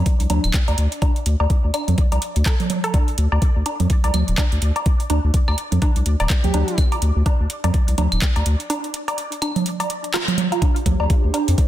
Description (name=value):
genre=minimal techno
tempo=125 BPM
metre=4/4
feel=swing 59% on 16ths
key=D minor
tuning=A4 = 444 Hz
part: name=saturated sub bass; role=bass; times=0.0-11.5 s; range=D1 to F2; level=-18 LUFS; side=equal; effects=sidechain pumping
part: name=electronic kick drum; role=drums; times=0.1-11.7 s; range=none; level=-18 LUFS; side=equal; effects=overdrive, small room reverb
part: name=garage drum kit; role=drums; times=0.1-11.7 s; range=handclaps, hi-hat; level=-27 LUFS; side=right 1 dB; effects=overdrive, small room reverb
part: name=resonant blip pluck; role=riff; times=0.3-11.4 s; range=D4 to D5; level=-27 LUFS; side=right 1 dB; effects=phaser, sidechain pumping, dub echo
part: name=congas, woodblock and claves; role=percussion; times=0.3-11.5 s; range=none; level=-26 LUFS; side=right 3 dB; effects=small room reverb, tape echo
part: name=airy dreamy lead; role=melody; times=6.4-6.8 s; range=G4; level=-29 LUFS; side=right 1 dB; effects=chorus, vintage 12-bit sampler grit, tape echo
part: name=ethereal airy pad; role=texture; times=10.8-11.7 s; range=D4 to F5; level=-28 LUFS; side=right 2 dB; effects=ensemble chorus, built-in reverb, sidechain pumping
room=light reverb, digital ambience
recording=dense, heavily limited modern master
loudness=-17 LUFS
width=side -13 dB against mid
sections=0.0-10.6 A section; 10.6-11.7 B section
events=break 8.7-10.6; band accent 10.1; drop 10.6-11.7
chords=0.0 N.C.; 10.6 Dm7